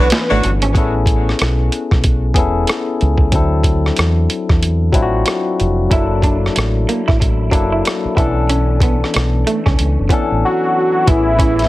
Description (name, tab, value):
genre	R&B, neo-soul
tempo	93 BPM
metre	4/4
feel	swing 59% on 16ths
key	A major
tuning	A4 = 440 Hz
part	fat analog lead	melody	0.0-0.4, 10.4-11.7 s	E4 to B4	-15 LUFS	equal	plate reverb
part	barky tine electric piano	accompaniment	0.0-11.7 s	E3 to B4	-19 LUFS	left 4 dB	plate reverb
part	warm horn section	stabs	0.0-0.5 s	F#3 to F#4	-22 LUFS	equal	plate reverb, tape echo
part	deep dub fingered electric bass	bass	0.0-11.6 s	E1 to E2	-16 LUFS	equal	none
part	boom bap sampler-style drum kit	drums	0.1-11.7 s	hi-hat, kick drum, rim click, snare drum	-16 LUFS	equal	none
part	electric guitar through a small old amp	second line	0.3-0.7, 5.9-11.5 s	A3 to E4	-23 LUFS	right 4 dB	spring reverb, plate reverb
room	light reverb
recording	heavily compressed radio sound, multiband compression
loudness	-13 LUFS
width	side -17 dB against mid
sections	0.7-11.1 A section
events	break 0.0-0.7; band accent 0.0-0.7; silent gap 10.4-11.1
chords	0.0 Bm11; 0.7 Amaj9; 3.3 D9; 5.9 F#7alt; 8.2 Bm11; 11.1 Amaj9